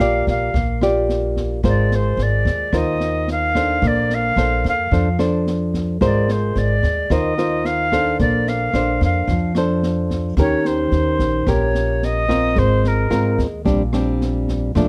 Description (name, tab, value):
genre	bossa nova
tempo	110 BPM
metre	4/4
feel	straight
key	Bb major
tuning	A4 = 440 Hz
part	jazz flute	melody	0.0-13.4 s	Bb4 to F5	-24 LUFS	equal	none
part	nylon-string guitar	accompaniment	0.0-14.9 s	Bb2 to D5	-23 LUFS	equal	none
part	upright bass	bass	0.0-14.9 s	Ab1 to F2	-24 LUFS	equal	none
part	open jazz drum kit	drums	0.3-14.9 s	kick drum, rim click, snare drum	-28 LUFS	equal	none
room	light reverb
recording	none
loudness	-19 LUFS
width	mono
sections	0.0-14.7 A section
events	none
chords	0.0 Bb6; 1.6 Ab69; 3.8 Bbmaj9; 6.0 Ab69; 8.2 Bbmaj9; 10.4 Eb7; 12.6 Ab69; 13.7 Bb69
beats	0.00 0.54 1.09 | 1.64 2.18 2.73 3.27 | 3.82 4.37 4.91 5.46 | 6.01 6.55 7.10 7.65 | 8.19 8.74 9.29 9.83 | 10.38 10.93 11.47 12.02 | 12.56 13.11 13.66 14.20 | 14.75